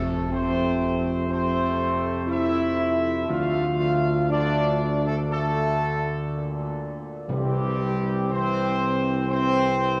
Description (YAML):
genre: classical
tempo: 60 BPM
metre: 4/4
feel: straight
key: F major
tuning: A4 = 441 Hz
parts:
  - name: dark trumpet section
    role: melody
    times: 0.0-10.0 s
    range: G4 to F5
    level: -31 LUFS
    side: equal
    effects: none
  - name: warm French horn section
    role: sustained chords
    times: 0.0-10.0 s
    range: G3 to F4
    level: -30 LUFS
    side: equal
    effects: none
  - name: warm trombone section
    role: sustained chords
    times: 0.0-10.0 s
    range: Bb2 to C4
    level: -33 LUFS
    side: equal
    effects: none
  - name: dark tuba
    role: bass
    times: 0.0-10.0 s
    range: C2 to F2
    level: -29 LUFS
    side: equal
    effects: none
  - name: timpani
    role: percussion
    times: 0.0-0.8, 7.3-8.8 s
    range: F2 to C3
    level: -35 LUFS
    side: equal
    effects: none
room: wet church reverb, RT60 3.8 s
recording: worn, warbling old tape, cassette tape, warbly pitch drift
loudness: -24 LUFS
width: mono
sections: 0.0-10.0 A section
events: none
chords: 0.0 F; 3.3 Dm; 7.3 C